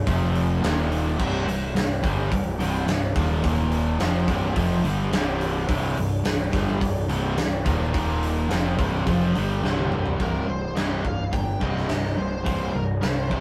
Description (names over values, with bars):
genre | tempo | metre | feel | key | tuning
hard rock | 106 BPM | 4/4 | straight | C minor | A4 = 441 Hz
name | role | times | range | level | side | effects
fuzz picked electric bass | bass | 0.0-13.4 s | C1 to C2 | -30 LUFS | equal | overdrive
crunchy overdriven guitar | riff | 0.1-13.4 s | C2 to G3 | -29 LUFS | equal | none
overdriven electric guitar | riff | 0.1-13.4 s | C2 to G3 | -32 LUFS | equal | none
huge arena drum kit | drums | 0.1-13.4 s | crash cymbal, hi-hat, kick drum, snare drum, toms | -30 LUFS | equal | none
high-gain lead guitar | melody | 10.2-13.4 s | Bb4 to G5 | -35 LUFS | equal | distortion
room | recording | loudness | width
moderate studio reverb, RT60 0.6 s | rough rehearsal-room recording, warm saturation | -24 LUFS | mono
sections
0.0-10.2 A section; 10.2-13.4 B section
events
drum fill 9.6-10.2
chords
0.1 F5; 0.6 Eb5; 1.2 Cm; 3.4 Eb5; 4.0 Cm; 7.9 Eb5; 8.5 C5